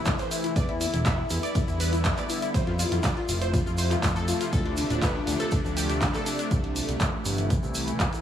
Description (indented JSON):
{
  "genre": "progressive house",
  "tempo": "121 BPM",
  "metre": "4/4",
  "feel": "straight",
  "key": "D dorian",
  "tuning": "A4 = 439 Hz",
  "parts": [
    { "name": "evolving wavetable pad", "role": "sustained chords", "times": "0.0-8.2 s", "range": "C3 to E4", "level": "-32 LUFS", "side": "right 1 dB", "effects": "phaser, built-in reverb, sidechain pumping" },
    { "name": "analog pluck", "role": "arpeggios", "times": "0.1-6.5 s", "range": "D4 to E5", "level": "-31 LUFS", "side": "left 3 dB", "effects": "chorus, sidechain pumping, digital delay" },
    { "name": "fat analog bass", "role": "bass", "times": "0.1-8.1 s", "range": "D1 to F2", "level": "-28 LUFS", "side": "equal", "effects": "tube saturation, sidechain pumping" },
    { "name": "breakbeat sampler-style drum kit", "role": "drums", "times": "0.1-6.4 s", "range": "ride cymbal, snare drum", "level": "-43 LUFS", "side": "right 4 dB", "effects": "none" },
    { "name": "electronic kick drum", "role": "drums", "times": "0.1-8.1 s", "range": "none", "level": "-27 LUFS", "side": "equal", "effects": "none" },
    { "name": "pop drum kit", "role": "drums", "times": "0.1-8.2 s", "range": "handclaps, hi-hat", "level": "-31 LUFS", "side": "equal", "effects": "none" },
    { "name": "tube shaker", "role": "percussion", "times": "0.1-8.2 s", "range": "none", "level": "-38 LUFS", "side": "right 3 dB", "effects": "none" }
  ],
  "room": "light reverb, digital ambience",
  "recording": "small room ambience",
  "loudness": "-24 LUFS",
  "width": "side -10 dB against mid",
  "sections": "0.0-8.2 A section",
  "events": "none",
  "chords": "0.0 Am; 0.6 Em7; 2.5 Fmaj7; 4.5 Dm7; 6.5 Am"
}